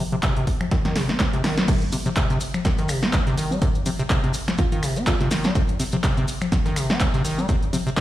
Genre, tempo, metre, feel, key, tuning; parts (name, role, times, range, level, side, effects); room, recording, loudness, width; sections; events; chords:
acid house; 124 BPM; 4/4; swing 56% on 16ths; C minor pentatonic; A4 = 440 Hz
acid bass, square; riff; 0.0-8.0 s; C3 to C4; -25 LUFS; equal; overdrive, ping-pong delay
punchy analog drum machine; drums; 0.1-8.0 s; congas, crash cymbal, finger snaps, handclaps, hi-hat, snare drum; -25 LUFS; left 1 dB; overdrive
breakbeat sampler-style drum kit; drums; 0.2-8.0 s; hi-hat, snare drum; -37 LUFS; right 1 dB
electronic kick drum; drums; 0.2-8.0 s; -22 LUFS; equal; overdrive
maracas; percussion; 1.7-8.0 s; -36 LUFS; left 4 dB
bell-like FM electric piano; melody; 4.6-5.3 s; F4; -33 LUFS; right 2 dB; chorus, tape echo
light reverb; played on a big sound system in a bare room, large studio reverb; -20 LUFS; side -14 dB against mid
0.0-1.7 A section; 1.7-8.0 B section
drum fill 0.7-1.7; band accent 1.6; drop 1.7-8.0
0.0 Cm